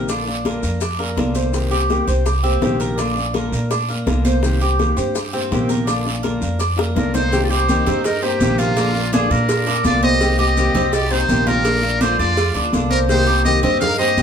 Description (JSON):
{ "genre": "latin, Cuban son and guajira", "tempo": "166 BPM", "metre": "4/4", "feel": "straight", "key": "C minor", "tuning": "A4 = 440 Hz", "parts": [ { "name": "nylon-string guitar", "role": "accompaniment", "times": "0.0-14.2 s", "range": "C3 to G4", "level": "-23 LUFS", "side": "left 4 dB", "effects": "none" }, { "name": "Cuban tres", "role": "arpeggios", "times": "0.0-14.2 s", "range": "Bb3 to C5", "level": "-23 LUFS", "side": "right 2 dB", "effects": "none" }, { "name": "upright bass", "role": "bass", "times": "0.0-14.2 s", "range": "Bb1 to Bb2", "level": "-21 LUFS", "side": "equal", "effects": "none" }, { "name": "bongos and cowbell", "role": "percussion", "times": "0.1-14.2 s", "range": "none", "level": "-26 LUFS", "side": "left 1 dB", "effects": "none" }, { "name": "congas", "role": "percussion", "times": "0.1-14.2 s", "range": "none", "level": "-24 LUFS", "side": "equal", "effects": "none" }, { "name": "guiro", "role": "percussion", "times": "0.1-14.2 s", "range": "none", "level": "-32 LUFS", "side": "right 5 dB", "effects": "none" }, { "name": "maracas", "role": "percussion", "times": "0.1-14.2 s", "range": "none", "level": "-35 LUFS", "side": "left 4 dB", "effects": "none" }, { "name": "trumpet with metal mute", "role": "melody", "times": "7.0-14.2 s", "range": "F4 to F5", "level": "-21 LUFS", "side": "equal", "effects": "none" }, { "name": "rich studio violin section", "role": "second line", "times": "7.0-14.2 s", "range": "Bb3 to Bb4", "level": "-28 LUFS", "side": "equal", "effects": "none" } ], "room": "moderate studio reverb, RT60 0.6 s", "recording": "band playing live in one room", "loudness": "-16 LUFS", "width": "side -8 dB against mid", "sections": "0.0-7.3 A section; 7.3-14.2 B section", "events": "drum fill 6.8-7.3", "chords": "0.1 Bb; 1.5 Cm7; 3.0 Bb; 4.4 Cm7; 5.9 Bb; 7.3 Cm7; 8.8 Bb; 10.2 Cm7; 11.7 Bb; 13.1 Cm7", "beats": "| 0.09 0.45 0.81 1.17 | 1.54 1.90 2.26 2.62 | 2.98 3.35 3.71 4.07 | 4.43 4.79 5.15 5.51 | 5.88 6.24 6.60 6.96 | 7.32 7.68 8.04 8.41 | 8.77 9.13 9.49 9.85 | 10.21 10.57 10.93 11.29 | 11.65 12.01 12.37 12.73 | 13.09 13.46 13.81 14.18" }